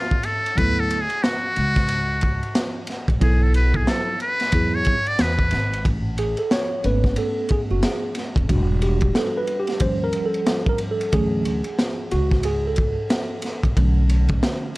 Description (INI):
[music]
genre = hip hop, jazz-hop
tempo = 91 BPM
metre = 4/4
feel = swing 61% on 16ths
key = A major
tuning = A4 = 440 Hz
[part]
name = trumpet with metal mute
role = melody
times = 0.0-5.9 s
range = E#4 to D5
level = -23 LUFS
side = equal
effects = none
[part]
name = crunchy breakbeat drum kit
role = drums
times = 0.1-14.8 s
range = hi-hat, kick drum, ride cymbal, snare drum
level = -23 LUFS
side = equal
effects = none
[part]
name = mellow tine electric piano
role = accompaniment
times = 0.6-14.7 s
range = D3 to C#5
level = -24 LUFS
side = right 1 dB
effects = medium stereo tremolo
[part]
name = upright bass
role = bass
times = 0.6-14.4 s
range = D#1 to E2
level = -21 LUFS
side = equal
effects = none
[sound]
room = studio reverb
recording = none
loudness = -19 LUFS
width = side -21 dB against mid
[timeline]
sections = 0.0-5.9 A section; 5.9-14.8 A section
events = muted trumpet solo 0.0-5.9; tine electric piano solo 5.9-14.8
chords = 0.0 N.C.; 0.6 Dmaj7; 3.2 B5; 4.5 E; 5.9 Amaj7; 8.5 Em7; 9.8 D#9; 11.1 Dmaj7; 13.8 Bm7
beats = | 0.58 1.24 1.90 2.56 | 3.21 3.88 4.53 5.19 | 5.85 6.51 7.17 7.83 | 8.49 9.15 9.81 10.47 | 11.13 11.79 12.45 13.11 | 13.77 14.42